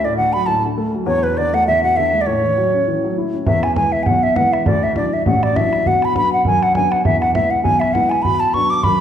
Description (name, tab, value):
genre	celtic folk, Celtic reel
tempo	201 BPM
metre	4/4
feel	swing 55% on 8ths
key	unclear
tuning	A4 = 439 Hz
part	bright baroque flute	melody	0.0-9.0 s	B4 to D6	-16 LUFS	right 1 dB	none
part	dark upright piano	accompaniment	0.0-9.0 s	A1 to E4	-20 LUFS	left 2 dB	none
part	bodhran	percussion	3.5-8.9 s	none	-21 LUFS	right 1 dB	none
room	wet recital hall reverb, RT60 1.5 s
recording	recorded in a church or concert hall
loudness	-14 LUFS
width	side -9 dB against mid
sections	0.0-3.5 A section; 3.5-9.0 B section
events	none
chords	0.0 D; 1.1 E7sus4; 1.7 E7; 2.3 A6; 3.5 E; 4.7 Dadd9; 5.9 Bm; 7.1 E; 8.2 Bm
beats	0.17 0.47 0.78 | 1.07 1.38 1.67 1.97 | 2.27 2.57 2.87 3.17 | 3.47 3.77 4.07 4.37 | 4.67 4.96 5.26 5.56 | 5.86 6.16 6.46 6.75 | 7.05 7.35 7.65 7.95 | 8.24 8.54 8.84